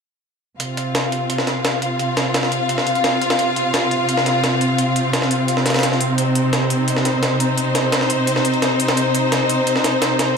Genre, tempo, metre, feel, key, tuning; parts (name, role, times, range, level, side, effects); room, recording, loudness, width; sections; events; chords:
dark technical drum and bass; 172 BPM; 4/4; straight; A4 = 440 Hz
rich studio string section; sustained chords; 0.6-10.4 s; C3 to F5; -17 LUFS; equal
breakbeat sampler-style drum kit; drums; 0.6-10.3 s; hi-hat, snare drum; -22 LUFS; equal; high-pass filter on hats, studio reverb, high-pass filter on snare, high-pass filter on room
electronic hi-hat; drums; 0.6-10.3 s; -27 LUFS; left 2 dB; low-pass filter on hats, studio reverb
moderate lush hall reverb, RT60 2.0 s; dark, warm production; -16 LUFS; side -5 dB against mid
0.6-10.4 A section
0.6 F5